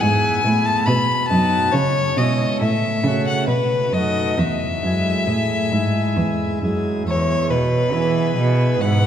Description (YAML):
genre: classical, baroque-style sonata movement with continuo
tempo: 68 BPM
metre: 3/4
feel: straight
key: E major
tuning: A4 = 440 Hz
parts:
  - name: clear violin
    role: melody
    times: 0.0-9.1 s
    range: B4 to B5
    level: -21 LUFS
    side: left 3 dB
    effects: none
  - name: pipe organ, principal chorus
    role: accompaniment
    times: 0.0-9.1 s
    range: E2 to B4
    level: -22 LUFS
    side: right 1 dB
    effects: none
  - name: rich cello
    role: bass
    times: 0.0-9.1 s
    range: E2 to E3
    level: -20 LUFS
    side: right 1 dB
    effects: none
room: wet church reverb, RT60 3.5 s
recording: recorded in a church or concert hall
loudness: -17 LUFS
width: side -9 dB against mid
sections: 0.0-7.1 A section; 7.1-9.1 B section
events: none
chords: 0.0 E; 0.9 B; 1.7 C#m; 2.6 F#m/A; 3.5 B7; 4.4 E